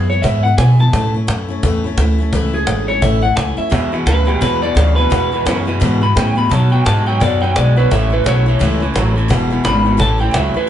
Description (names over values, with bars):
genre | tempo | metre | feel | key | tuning
rockabilly | 172 BPM | 4/4 | swing 60% on 8ths | E mixolydian | A4 = 441 Hz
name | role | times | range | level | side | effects
electric guitar through a small old amp | melody | 0.0-10.7 s | G4 to B5 | -18 LUFS | left 1 dB | warbly pitch drift
picked steel-string acoustic guitar | accompaniment | 0.0-10.7 s | E2 to F#4 | -22 LUFS | left 4 dB | none
upright bass | bass | 0.0-10.6 s | E1 to B2 | -15 LUFS | equal | none
cajon | drums | 0.1-10.6 s | none | -21 LUFS | equal | none
electric guitar at the edge of break-up | riff | 3.7-10.7 s | E2 to G#3 | -20 LUFS | right 2 dB | none
room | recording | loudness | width
moderate large studio reverb, RT60 0.9 s | band playing live in one room, nothing above 10.8 kHz | -12 LUFS | side -10 dB against mid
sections
0.0-10.7 A section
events
clean electric guitar solo 0.0-10.7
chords
0.0 E; 0.9 A; 3.7 E; 6.5 B; 7.9 A; 9.3 E; 10.0 A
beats
0.24 0.59 | 0.94 1.28 1.63 1.98 | 2.33 2.68 3.03 3.38 | 3.73 4.07 4.42 4.77 | 5.12 5.47 5.82 6.17 | 6.51 6.86 7.21 7.56 | 7.91 8.26 8.61 8.95 | 9.30 9.65 10.00 10.35